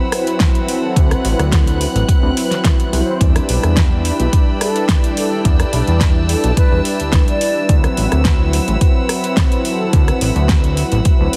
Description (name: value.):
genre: nu-disco, nu disco.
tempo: 107 BPM.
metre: 4/4.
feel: straight.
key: unclear.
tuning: A4 = 440 Hz.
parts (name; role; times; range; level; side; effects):
warm analog pad; accompaniment; 0.0-11.4 s; F#3 to C5; -22 LUFS; equal; chorus, sidechain pumping, analog delay.
rich chamber violin section; sustained chords; 0.0-11.4 s; C4 to F#6; -28 LUFS; equal; sidechain pumping.
pop drum kit; drums; 0.1-11.4 s; hi-hat, rim click, snare drum; -24 LUFS; equal; studio reverb.
electronic kick drum; drums; 0.4-11.2 s; none; -16 LUFS; equal; studio reverb.
fat analog bass; bass; 1.0-11.3 s; A1 to E2; -19 LUFS; equal; none.
mellow hollow concert flute; melody; 4.6-7.8 s; A4 to D5; -25 LUFS; equal; none.
room: little or no reverb.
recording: heavily compressed radio sound.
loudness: -15 LUFS.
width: mono.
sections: 0.0-11.4 A section.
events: none.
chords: 0.0 D13; 3.2 Em7; 7.7 D13.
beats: 0.41 | 0.96 1.53 2.09 2.65 | 3.21 3.77 4.33 4.89 | 5.45 6.01 6.57 7.13 | 7.69 8.26 8.82 9.38 | 9.94 10.50 11.06.